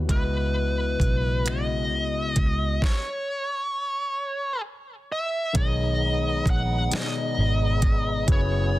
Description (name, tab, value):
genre	slow six-eight R&B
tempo	44 BPM (dotted quarters)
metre	6/8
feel	straight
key	B major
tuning	A4 = 440 Hz
part	overdriven tine electric piano	accompaniment	0.0-8.8 s	B2 to D#5	-30 LUFS	left 6 dB	none
part	vintage muted fingered electric bass	bass	0.0-8.8 s	F#1 to C#2	-25 LUFS	equal	none
part	smooth overdriven lead guitar	melody	0.1-8.8 s	B4 to F#5	-28 LUFS	right 1 dB	plate reverb
part	smooth R&B drum kit	drums	0.1-8.5 s	finger snaps, hi-hat, kick drum, snare drum	-23 LUFS	equal	soft clipping on snare
part	tonewheel organ	sustained chords	5.5-8.8 s	F#3 to G#4	-34 LUFS	right 1 dB	chorus vibrato, slow rotary speaker
room	little or no reverb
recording	dense, heavily limited modern master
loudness	-22 LUFS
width	side -16 dB against mid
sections	0.0-5.5 A section; 5.5-8.8 B section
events	stop 2.8-5.5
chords	0.1 C#m11; 2.8 N.C.; 5.5 B6; 8.3 F#7sus4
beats	| 0.10 1.46 | 2.82 4.19 | 5.55 6.91 | 8.28